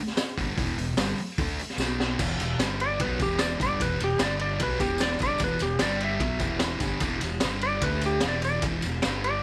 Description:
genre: garage rock duo or trio.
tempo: 149 BPM.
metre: 4/4.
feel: straight.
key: unclear.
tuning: A4 = 441 Hz.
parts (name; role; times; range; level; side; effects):
raw garage drum kit; drums; 0.1-9.3 s; crash cymbal, hi-hat, kick drum, ride cymbal, snare drum; -31 LUFS; equal; none.
tambourine; percussion; 0.2-9.1 s; none; -45 LUFS; equal; none.
fuzz guitar; riff; 0.4-9.4 s; E2 to D4; -32 LUFS; equal; distortion.
growling fingered electric bass; bass; 0.4-9.4 s; E1 to D2; -36 LUFS; equal; overdrive.
clean lap steel guitar; melody; 2.8-9.4 s; G4 to E5; -31 LUFS; equal; none.
room: little or no reverb.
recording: none.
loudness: -27 LUFS.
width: mono.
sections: 0.0-2.2 A section; 2.2-9.4 B section.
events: drum fill 1.8-2.2.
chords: 0.0 E5; 1.8 B5; 2.2 E5; 2.6 G5; 3.0 E5; 4.2 G5; 4.6 E5; 5.8 G5; 6.2 E5; 7.4 G5; 7.8 D5; 8.2 E5; 9.0 G5.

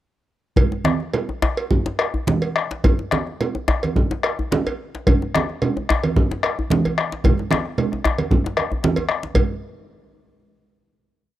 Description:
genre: west african traditional, West African drum ensemble.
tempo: 105-121 BPM.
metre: 4/4.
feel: straight.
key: none.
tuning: none.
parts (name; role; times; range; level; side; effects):
bombo; percussion; 0.6-9.6 s; none; -21 LUFS; left 2 dB; none.
congas; percussion; 0.6-9.6 s; none; -22 LUFS; right 3 dB; none.
cowbell; percussion; 0.6-9.6 s; none; -26 LUFS; right 4 dB; none.
djembe; percussion; 0.6-9.6 s; none; -24 LUFS; left 2 dB; none.
room: small room ambience.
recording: dry, close 1970s-style studio recording.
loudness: -18 LUFS.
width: side -13 dB against mid.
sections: 0.6-9.4 A section; 9.4-11.4 final hit.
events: speeding up 0.6-11.4.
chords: none.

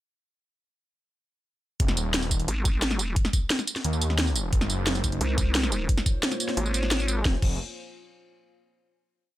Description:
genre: dark technical drum and bass.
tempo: 176 BPM.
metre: 4/4.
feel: straight.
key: F phrygian.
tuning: A4 = 443 Hz.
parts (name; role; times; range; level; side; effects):
wide detuned saw bass; bass; 1.8-5.2, 7.3-7.6 s; Eb1 to Eb2; -27 LUFS; equal; chorus, tube saturation, sidechain pumping.
drum and bass drum kit; drums; 1.8-7.5 s; crash cymbal, hi-hat, snare drum, tambourine; -27 LUFS; equal; studio reverb.
electronic kick drum; drums; 1.8-7.5 s; none; -25 LUFS; equal; studio reverb.
vowel-sweep wobble bass; bass; 2.5-3.1, 5.2-7.2 s; Ab1 to C2; -26 LUFS; equal; chorus.
dark analog pad; sustained chords; 4.8-7.4 s; Ab3 to Db5; -34 LUFS; equal; chorus, sidechain pumping.
room: little or no reverb.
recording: none.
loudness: -23 LUFS.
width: side -15 dB against mid.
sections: 1.8-7.3 drop; 7.3-8.6 final chord.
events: drop 1.8-7.3.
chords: 1.8 N.C.; 4.5 Abadd9; 5.9 Bbm7; 7.3 Fm.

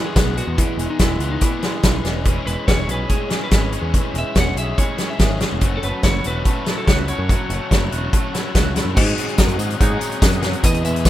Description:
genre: indie rock.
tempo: 143 BPM.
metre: 4/4.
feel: straight.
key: unclear.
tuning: A4 = 439 Hz.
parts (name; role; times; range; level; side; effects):
lightly driven lead guitar; melody; 0.0-11.1 s; D#4 to F#5; -27 LUFS; equal; slapback echo.
overdriven electric guitar; riff; 0.0-11.1 s; E2 to G#4; -27 LUFS; left 7 dB; none.
twangy electric guitar; riff; 0.0-11.1 s; G#2 to G#4; -30 LUFS; right 8 dB; lush chorus, slapback echo.
picked electric bass; bass; 0.2-11.0 s; E1 to G#2; -23 LUFS; equal; none.
loose indie drum kit; drums; 0.2-11.1 s; crash cymbal, hi-hat, kick drum, snare drum; -18 LUFS; equal; none.
tonewheel organ; sustained chords; 2.2-11.1 s; B4 to E6; -34 LUFS; equal; slow rotary speaker, chorus vibrato.
synth chime; second line; 8.9-11.1 s; D#4 to B4; -29 LUFS; right 1 dB; ensemble chorus.
tambourine; percussion; 9.0-11.1 s; none; -35 LUFS; right 1 dB; none.
room: small room ambience.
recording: rough home demo mix.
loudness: -16 LUFS.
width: side -13 dB against mid.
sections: 0.0-9.0 A section; 9.0-11.1 B section.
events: none.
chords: 0.0 C#m7/E; 5.6 F#m7; 9.0 G#7sus4.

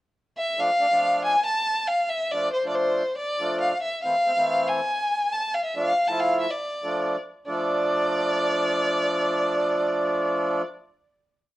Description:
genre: klezmer.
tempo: 139 BPM.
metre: 4/4.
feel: straight.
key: D minor.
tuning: A4 = 440 Hz.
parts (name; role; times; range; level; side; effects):
rich violin; melody; 0.4-10.6 s; C5 to A5; -24 LUFS; left 1 dB; none.
accordion; accompaniment; 0.6-10.6 s; E3 to E4; -25 LUFS; right 1 dB; none.
room: wet studio reverb, RT60 0.6 s.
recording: worn, warbling old tape, cassette tape, warbly pitch drift.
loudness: -22 LUFS.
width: side -16 dB against mid.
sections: 0.0-0.6 pickup bar; 0.6-7.5 A section; 7.5-10.9 final chord.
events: none.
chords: 0.0 N.C.; 0.6 Dm; 4.0 Am; 5.8 Dm.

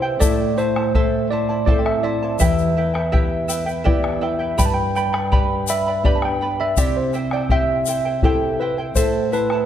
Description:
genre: andean folk, Andean ensemble.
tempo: 82 BPM.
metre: 3/4.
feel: straight.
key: unclear.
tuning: A4 = 440 Hz.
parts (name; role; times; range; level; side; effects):
tine electric piano; melody; 0.0-9.7 s; A4 to A5; -22 LUFS; right 1 dB; medium stereo tremolo.
charango; accompaniment; 0.0-9.7 s; E4 to B5; -25 LUFS; right 3 dB; none.
nylon-string guitar; accompaniment; 0.0-9.7 s; E2 to A4; -23 LUFS; equal; none.
bombo; percussion; 0.2-9.7 s; none; -21 LUFS; left 1 dB; none.
tube shaker; percussion; 0.2-9.4 s; none; -30 LUFS; left 8 dB; none.
room: moderate concert hall reverb, RT60 2.3 s.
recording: none.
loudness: -17 LUFS.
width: side -10 dB against mid.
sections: 0.0-9.7 A section.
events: none.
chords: 0.2 Am; 2.4 Em; 4.6 G; 6.8 C; 9.0 Am.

